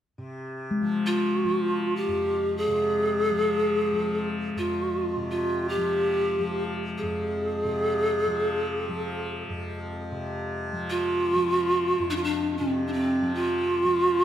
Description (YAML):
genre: world meditative, free-time meditation music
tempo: free time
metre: none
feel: none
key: F minor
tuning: A4 = 443 Hz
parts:
  - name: tanpura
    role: drone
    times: 0.2-14.2 s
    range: F2 to F3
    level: -32 LUFS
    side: equal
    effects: none
  - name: quartz singing bowl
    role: texture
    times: 0.7-9.6 s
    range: Ab3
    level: -33 LUFS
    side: left 4 dB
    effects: none
  - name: breathy pan flute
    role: melody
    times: 1.1-14.2 s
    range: C4 to Ab4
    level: -24 LUFS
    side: right 1 dB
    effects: dub echo
room: wet echo chamber reverb, RT60 1.7 s, small room ambience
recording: echo-heavy mix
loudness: -24 LUFS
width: side -10 dB against mid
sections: 0.2-14.2 A section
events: none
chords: none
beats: free time